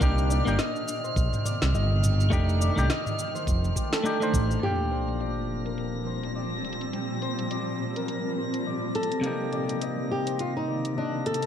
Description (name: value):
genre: sunset chillout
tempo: 104 BPM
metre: 4/4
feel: swing 57% on 16ths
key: Bb major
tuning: A4 = 444 Hz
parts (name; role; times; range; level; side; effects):
- clean electric guitar; accompaniment; 0.0-11.5 s; Bb2 to C5; -31 LUFS; left 1 dB; auto-pan, tape echo
- shimmering ambient pad; sustained chords; 0.0-11.5 s; Bb2 to C4; -33 LUFS; right 1 dB; chorus, built-in reverb, vintage 12-bit sampler grit
- concert harp; arpeggios; 0.0-11.5 s; G4 to Eb5; -34 LUFS; left 3 dB; low-pass filter, tape echo
- overdriven fingered electric bass; bass; 0.0-4.5 s; F1 to C2; -24 LUFS; equal; none
- electronic kick drum; drums; 0.0-4.5 s; none; -27 LUFS; equal; none
- smooth R&B drum kit; drums; 0.0-11.5 s; cabasa, hi-hat, snare drum, toms; -32 LUFS; right 1 dB; low-pass filter on perc, low-pass filter on snare, low-pass filter on toms, low-pass filter on hats
- drifting glass-harmonics texture; texture; 0.0-11.5 s; F6 to Bb6; -38 LUFS; right 1 dB; chorus, built-in reverb
- flamenco guitar; melody; 4.6-11.5 s; D4 to A4; -31 LUFS; left 1 dB; vintage 12-bit sampler grit, tape echo
- sub drop; sound effects; 4.6-6.9 s; none; -35 LUFS; right 1 dB; none
room: moderate digital room reverb, RT60 1.3 s, digital ambience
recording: none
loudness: -25 LUFS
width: side -9 dB against mid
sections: 0.0-4.6 A section; 4.6-11.5 B section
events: impact 4.6-6.9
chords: 0.0 Cm9; 2.3 F13; 4.6 Bb69; 9.2 Cm9